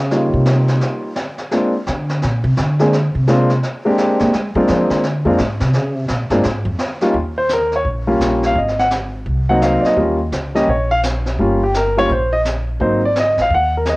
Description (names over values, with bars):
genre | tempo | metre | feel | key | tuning
jazz piano trio | 170 BPM | 4/4 | swing 63% on 8ths | Eb major | A4 = 440 Hz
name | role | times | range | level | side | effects
upright bass | bass | 0.0-14.0 s | G1 to Bb3 | -19 LUFS | equal | transformer saturation
warm concert grand piano | melody | 0.1-14.0 s | Gb3 to Gb5 | -15 LUFS | equal | cassette tape
jazz brush drum kit | drums | 0.1-14.0 s | brushed snare drum, hi-hat, kick drum, snare drum | -24 LUFS | equal | cassette tape
room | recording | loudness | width
light reverb, studio reverb | home recording on cassette | -14 LUFS | side -22 dB against mid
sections
0.0-7.1 A section; 7.1-14.0 B section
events
upright bass solo 0.0-7.1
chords
0.0 Eb7; 1.5 Bb7; 5.7 Gmadd11; 6.4 N.C.; 7.1 Eb7; 8.6 Ab7; 10.0 Eb7 (rootless); 12.8 Ab7